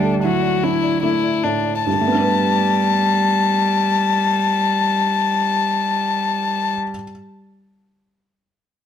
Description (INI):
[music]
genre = neoclassical piano and strings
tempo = 72 BPM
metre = 3/4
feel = rubato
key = G major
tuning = A4 = 440 Hz
[part]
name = rich violin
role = melody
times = 0.0-6.7 s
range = D4 to A5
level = -18 LUFS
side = left 6 dB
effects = none
[part]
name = warm cello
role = second line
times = 0.0-6.8 s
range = F#3 to G3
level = -22 LUFS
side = right 3 dB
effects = none
[part]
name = felt-muted upright piano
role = accompaniment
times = 0.0-7.1 s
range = D2 to B4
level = -23 LUFS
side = right 4 dB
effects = none
[part]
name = buzzing marimba with medium hard mallets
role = arpeggios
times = 0.0-1.8 s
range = D4 to D5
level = -33 LUFS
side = equal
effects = none
[sound]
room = light reverb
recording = close, detailed microphones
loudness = -16 LUFS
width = side -9 dB against mid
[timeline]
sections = 0.0-1.9 A section; 1.9-6.9 B section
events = slowing down 0.0-1.9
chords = 0.0 Dadd9; 1.9 Gadd9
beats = 0.23 1.03 | 1.86 2.70 3.54 | 4.37 5.21 6.05